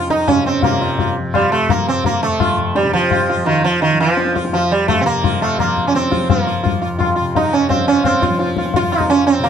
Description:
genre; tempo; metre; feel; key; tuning
indian classical, Hindustani; 170 BPM; 4/4; straight; unclear; A4 = 440 Hz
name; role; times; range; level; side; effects
sitar; melody; 0.0-9.5 s; Eb3 to F4; -16 LUFS; right 3 dB; none
tanpura; drone; 0.0-9.5 s; F2 to F3; -24 LUFS; equal; none
tabla; percussion; 0.1-9.5 s; none; -19 LUFS; left 5 dB; none
room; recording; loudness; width
moderate studio reverb, RT60 0.6 s; dark, warm production; -14 LUFS; side -8 dB against mid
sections
0.6-9.5 A section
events
none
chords
none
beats
0.27 | 0.62 0.98 1.34 1.70 | 2.05 2.41 2.76 3.12 | 3.47 3.83 4.18 4.53 | 4.89 5.24 5.59 5.95 | 6.30 6.65 7.00 7.35 | 7.70 8.05 8.40 8.75 | 9.10 9.45

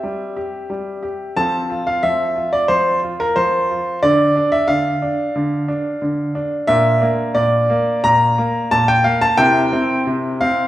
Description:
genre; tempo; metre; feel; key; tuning
classical-period piano sonatina; 90 BPM; 4/4; rubato; F major; A4 = 440 Hz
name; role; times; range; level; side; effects
clear baby grand piano; solo; 0.0-10.7 s; Bb2 to Bb5; -15 LUFS; equal; none
room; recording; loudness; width
wet recital hall reverb, RT60 1.4 s; heard from further back in the room; -15 LUFS; side -14 dB against mid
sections
0.0-10.7 A section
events
none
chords
0.0 C/G; 1.4 F; 4.0 Dm; 6.7 Bb; 9.4 C7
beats
0.03 0.70 | 1.36 2.03 2.70 3.36 | 4.03 4.69 5.35 6.01 | 6.68 7.36 8.05 8.72 | 9.39 10.08

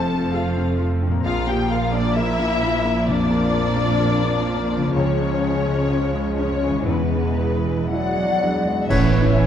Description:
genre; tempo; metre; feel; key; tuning
cinematic, emotional film score for orchestra; 57-68 BPM; 4/4; rubato; unclear; A4 = 441 Hz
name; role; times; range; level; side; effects
muted studio violin section; melody; 0.0-9.5 s; B4 to A5; -26 LUFS; left 4 dB; none
muted studio violin section; second line; 0.0-9.5 s; B3 to C#5; -28 LUFS; left 4 dB; none
muted studio viola section; accompaniment; 0.0-9.5 s; E3 to C#4; -26 LUFS; right 2 dB; none
warm grand piano; accompaniment; 0.0-9.5 s; Bb1 to C5; -25 LUFS; left 2 dB; none
concert harp; arpeggios; 0.0-9.5 s; F2 to Bb4; -30 LUFS; left 7 dB; none
muted studio cello section; bass; 0.0-9.5 s; E2 to F#3; -27 LUFS; right 2 dB; none
muted studio double bass section; bass; 0.0-9.5 s; E1 to C#2; -25 LUFS; right 3 dB; none
mellow large flute ensemble; second line; 7.9-9.5 s; C#5 to D5; -25 LUFS; left 1 dB; none
clear clarinet; second line; 8.9-9.3 s; B4; -30 LUFS; left 2 dB; none
clear oboe; second line; 8.9-9.3 s; C#5; -29 LUFS; right 3 dB; none
mellow French horn section; sustained chords; 8.9-9.5 s; B3 to C#4; -26 LUFS; left 3 dB; none
clash cymbals and concert bass drum; percussion; 8.9-9.5 s; none; -24 LUFS; equal; none
timpani; percussion; 8.9-9.5 s; A2; -26 LUFS; right 4 dB; none
room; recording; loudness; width
moderate concert hall reverb, RT60 1.9 s; dark, warm production; -18 LUFS; side -9 dB against mid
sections
0.0-8.9 A section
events
band accent 8.9-9.5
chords
0.0 F; 1.2 Bb; 4.9 C#; 6.9 E7; 8.9 Aadd9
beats
0.34 | 1.25 2.16 3.08 4.00 | 4.95 5.89 6.88 7.91 | 8.89

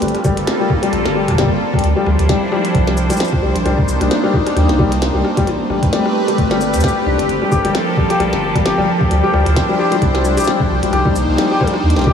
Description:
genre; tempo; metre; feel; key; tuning
IDM; 132 BPM; 4/4; swing 56% on 16ths; G minor; A4 = 440 Hz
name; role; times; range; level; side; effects
phased analog pad; sustained chords; 0.0-12.1 s; F3 to C5; -18 LUFS; right 1 dB; phaser, chorus
felt-muted upright piano; arpeggios; 0.0-12.1 s; G3 to G4; -18 LUFS; left 3 dB; analog delay
round analog bass; bass; 0.0-12.1 s; G1 to E2; -18 LUFS; equal; none
glitchy drum kit; drums; 0.0-12.1 s; cabasa, hi-hat, rim click, snare drum, toms; -24 LUFS; equal; overdrive, small room ambience, analog delay
electronic kick drum; drums; 0.2-12.1 s; none; -18 LUFS; equal; overdrive, small room ambience
bubbling stepped-filter texture; texture; 7.9-12.1 s; G5; -28 LUFS; left 1 dB; none
room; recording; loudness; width
wet huge ambient reverb, RT60 8.1 s; dreamy mix soaked in reverb, small room ambience; -13 LUFS; side -7 dB against mid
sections
0.0-12.1 A section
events
none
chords
0.0 Gm9; 1.8 Dm9; 3.4 Cm9; 5.5 Am9; 7.3 Gm9; 9.1 Dm9; 10.7 Cm9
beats
| 0.02 0.47 0.93 1.38 | 1.84 2.29 2.75 3.20 | 3.65 4.11 4.56 5.02 | 5.47 5.93 6.38 6.84 | 7.29 7.75 8.20 8.65 | 9.11 9.56 10.02 10.47 | 10.93 11.38 11.84

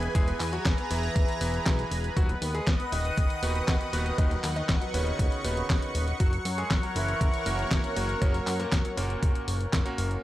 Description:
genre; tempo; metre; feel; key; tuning
italo disco; 119 BPM; 4/4; straight; unclear; A4 = 441 Hz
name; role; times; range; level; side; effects
bright concert grand piano; melody; 0.0-10.1 s; A#2 to G#4; -36 LUFS; left 1 dB; none
lush unison pad; sustained chords; 0.0-10.2 s; G#4 to D#6; -33 LUFS; equal; chorus, phaser
clear electric grand piano; stabs; 0.0-10.2 s; D#3 to B4; -36 LUFS; right 2 dB; none
fat analog bass; bass; 0.0-10.2 s; D#1 to F#2; -31 LUFS; equal; none
detuned 8-bit digital drum machine; drums; 0.0-10.2 s; handclaps, hi-hat, snare drum; -33 LUFS; left 1 dB; studio ambience
electronic kick drum; drums; 0.1-9.8 s; none; -26 LUFS; equal; studio ambience
room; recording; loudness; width
digital ambience; dry, gritty hardware recording, cassette tape; -25 LUFS; side -15 dB against mid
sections
0.0-10.2 A section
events
none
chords
0.0 E; 2.2 B/D#; 6.2 F#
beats
| 0.15 0.65 1.16 1.66 | 2.17 2.67 3.17 3.68 | 4.18 4.69 5.19 5.70 | 6.20 6.70 7.21 7.71 | 8.22 8.72 9.22 9.73

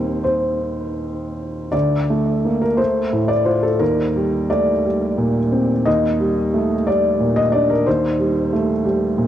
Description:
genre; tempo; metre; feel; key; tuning
neoclassical minimalist piano; 59 BPM (dotted quarters); 6/8; uneven beats, rubato; C dorian; A4 = 440 Hz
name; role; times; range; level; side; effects
felt-muted upright piano; solo; 0.0-9.3 s; D2 to Eb5; -16 LUFS; equal; cassette tape, tape echo
room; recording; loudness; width
light reverb; home recording on cassette; -16 LUFS; side -11 dB against mid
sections
0.0-1.7 A section; 1.7-9.3 B section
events
none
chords
0.0 Cm7/Eb; 1.7 Dm; 3.8 Cm7/Eb; 5.9 Ebmaj7; 7.9 Cm/Eb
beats
0.61 | 1.74 2.79 | 3.81 4.84 | 5.86 6.87 | 7.86 8.84

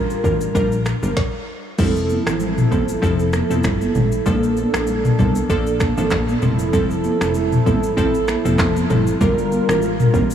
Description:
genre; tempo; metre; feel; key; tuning
afrobeats; 97 BPM; 4/4; swing 55% on 16ths; F major; A4 = 440 Hz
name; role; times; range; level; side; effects
glassy digital keys; accompaniment; 0.0-10.3 s; F3 to Bb4; -22 LUFS; left 1 dB; chorus
hollow soft pad; sustained chords; 0.0-10.3 s; F3 to Bb4; -24 LUFS; right 2 dB; chorus
plucky analog bass; bass; 0.0-10.3 s; F1 to C2; -22 LUFS; left 1 dB; none
afro-pop drum kit; drums; 0.1-10.3 s; crash cymbal, finger snaps, handclaps, kick drum, rim click, shaker, snare drum, toms; -21 LUFS; equal; none
congas; percussion; 1.8-10.3 s; none; -26 LUFS; right 5 dB; none
room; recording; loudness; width
moderate huge ambient reverb, RT60 3.9 s; dreamy mix soaked in reverb, studio ambience; -16 LUFS; side -9 dB against mid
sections
0.0-1.8 A section; 1.8-10.3 B section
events
stop 1.2-1.8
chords
0.0 Gm7; 1.8 Fmaj7; 4.3 Bbmaj7; 6.4 Fmaj7; 9.2 Gm7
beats
0.55 1.17 | 1.79 2.40 3.02 3.64 | 4.26 4.88 5.50 6.12 | 6.74 7.35 7.97 8.59 | 9.21 9.83

